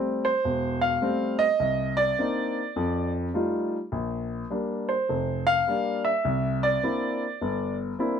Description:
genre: solo jazz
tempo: 103 BPM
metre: 4/4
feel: swing 67% on 8ths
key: unclear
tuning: A4 = 441 Hz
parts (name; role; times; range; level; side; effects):
- warm grand piano; solo; 0.0-8.2 s; E1 to F5; -24 LUFS; equal; none
room: moderate studio ambience, RT60 0.5 s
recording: none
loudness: -24 LUFS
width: side -7 dB against mid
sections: 0.0-8.2 A section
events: none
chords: 0.0 Am7; 1.6 Cm9; 2.8 F9; 3.9 Bb6; 6.2 C9

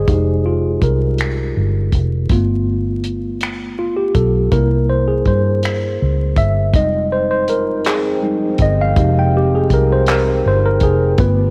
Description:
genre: slow six-eight R&B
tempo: 54 BPM (dotted quarters)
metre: 6/8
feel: straight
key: F minor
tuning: A4 = 440 Hz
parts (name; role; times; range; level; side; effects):
- tine electric piano; accompaniment; 0.0-11.5 s; G3 to G5; -20 LUFS; equal; overdrive, cassette tape
- vintage muted fingered electric bass; bass; 0.0-11.5 s; F1 to G2; -19 LUFS; equal; none
- damped 70s drum kit; drums; 0.1-11.4 s; finger snaps, handclaps, hi-hat, kick drum; -21 LUFS; equal; cassette tape
- chorused pulse-width pad; sustained chords; 6.7-11.5 s; F3 to G5; -28 LUFS; equal; cassette tape
room: light reverb, small room ambience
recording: home recording on cassette, vinyl crackle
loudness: -16 LUFS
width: mono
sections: 0.0-11.5 A section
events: tine electric piano solo 0.0-11.5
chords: 0.0 Fm9; 2.3 G7; 4.5 C7; 6.7 Fm9

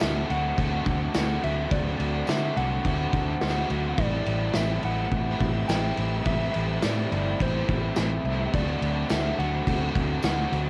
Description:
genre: rock, shoegaze and dream pop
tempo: 106 BPM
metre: 4/4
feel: straight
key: D mixolydian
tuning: A4 = 440 Hz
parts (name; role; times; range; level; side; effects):
- soft struck synth lead; melody; 0.0-10.7 s; C5 to G5; -35 LUFS; equal; chorus, cassette tape, analog delay
- phased analog pad; sustained chords; 0.0-10.7 s; F#4 to E6; -45 LUFS; equal; none
- twelve-string electric guitar; arpeggios; 0.0-10.7 s; F#3 to E4; -41 LUFS; equal; none
- crunchy overdriven guitar; riff; 0.0-10.7 s; A2 to F#4; -33 LUFS; equal; subtle chorus
- vintage muted fingered electric bass; bass; 0.0-10.7 s; G1 to D3; -31 LUFS; equal; none
- loose indie drum kit; drums; 0.0-10.7 s; crash cymbal, kick drum, snare drum; -31 LUFS; equal; cassette tape
- tambourine; percussion; 0.0-10.4 s; none; -48 LUFS; equal; none
room: light reverb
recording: home recording on cassette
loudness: -26 LUFS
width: mono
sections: 0.0-10.7 A section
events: none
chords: 0.0 D7; 4.0 Am7; 8.5 D7

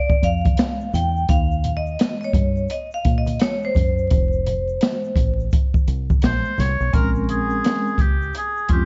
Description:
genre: hip hop, jazz-hop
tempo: 85 BPM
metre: 4/4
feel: swing 62% on 16ths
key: Bb dorian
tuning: A4 = 439 Hz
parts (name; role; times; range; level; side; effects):
- vibraphone with medium hard mallets; accompaniment; 0.0-8.9 s; Ab3 to G5; -27 LUFS; equal; none
- open jazz drum kit; drums; 0.1-8.9 s; hi-hat, kick drum, snare drum; -22 LUFS; equal; none
- egg shaker and congas; percussion; 0.1-8.9 s; none; -34 LUFS; equal; none
- deep dub fingered electric bass; bass; 0.2-8.9 s; F1 to Bb2; -25 LUFS; equal; none
- warm oboe; melody; 6.2-8.9 s; G4 to Db5; -27 LUFS; equal; none
room: light reverb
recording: dark, warm production, vinyl crackle, nothing above 7.7 kHz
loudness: -20 LUFS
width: mono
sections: 0.0-6.9 A section; 6.9-8.9 B section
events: vibraphone solo 0.0-6.9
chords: 0.0 Bb (rootless); 1.3 N.C.; 4.1 F; 6.2 Bbm; 6.9 Bbm9

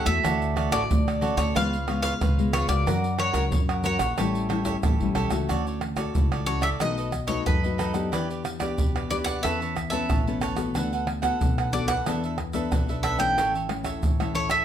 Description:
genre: samba and choro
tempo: 91 BPM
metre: 4/4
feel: straight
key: D major from 5.5 s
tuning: A4 = 440 Hz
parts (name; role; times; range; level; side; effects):
- bowl-back mandolin; melody; 0.0-14.6 s; B4 to G5; -28 LUFS; equal; none
- cavaquinho; accompaniment; 0.0-14.6 s; D4 to A5; -31 LUFS; right 4 dB; none
- nylon-string guitar; accompaniment; 0.0-14.6 s; F#2 to A#4; -30 LUFS; left 5 dB; none
- upright bass; bass; 0.1-14.6 s; A1 to F#2; -29 LUFS; equal; none
- egg shaker, pandeiro, tamborim and surdo; percussion; 0.1-14.6 s; none; -27 LUFS; right 1 dB; none
room: moderate studio reverb, RT60 0.7 s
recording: none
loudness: -23 LUFS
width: side -10 dB against mid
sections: 0.0-5.5 A section; 5.5-14.6 B section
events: none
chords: 0.2 Dmaj7; 1.6 C#7; 2.9 F#; 4.2 A7; 5.5 Dmaj7; 6.8 B7; 8.1 Em7; 9.4 Aadd9/E; 10.8 D6; 12.1 E7sus4; 13.4 A

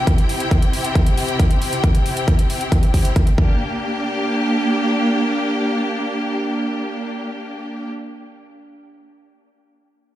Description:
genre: uplifting trance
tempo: 136 BPM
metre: 4/4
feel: straight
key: G dorian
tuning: A4 = 439 Hz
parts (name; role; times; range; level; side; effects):
- bright studio string section; sustained chords; 0.0-7.9 s; C3 to G5; -20 LUFS; equal; sidechain pumping
- electronic hi-hat; drums; 0.1-3.4 s; none; -31 LUFS; right 1 dB; overdrive
- electronic kick drum; drums; 0.1-3.5 s; none; -15 LUFS; equal; overdrive
room: light reverb, digital ambience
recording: played on a big sound system in a bare room, large studio reverb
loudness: -17 LUFS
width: side -13 dB against mid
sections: 0.0-3.6 A section; 3.6-7.1 B section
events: none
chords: 0.0 C; 3.4 Gm

